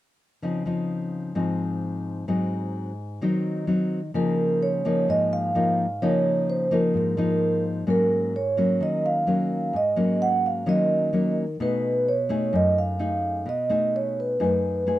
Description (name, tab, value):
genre	bossa nova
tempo	129 BPM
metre	4/4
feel	straight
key	Db major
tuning	A4 = 440 Hz
part	nylon-string guitar	accompaniment	0.4-15.0 s	Gb2 to Ab4	-24 LUFS	left 2 dB	none
part	vibraphone with medium mallets	melody	4.2-15.0 s	Bb4 to Gb5	-23 LUFS	right 2 dB	none
room	little or no reverb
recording	dry, close 1970s-style studio recording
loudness	-22 LUFS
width	side -14 dB against mid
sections	0.4-4.2 A section; 4.2-15.0 B section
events	none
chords	0.4 Dbmaj9; 2.3 Ab7; 4.2 Db69; 7.9 Ab9sus4; 11.6 Cb13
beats	| 0.42 0.89 1.35 1.82 | 2.29 2.75 3.22 3.68 | 4.15 4.62 5.08 5.55 | 6.01 6.48 6.95 7.41 | 7.88 8.34 8.81 9.28 | 9.74 10.21 10.67 11.14 | 11.61 12.07 12.54 13.01 | 13.47 13.94 14.40 14.87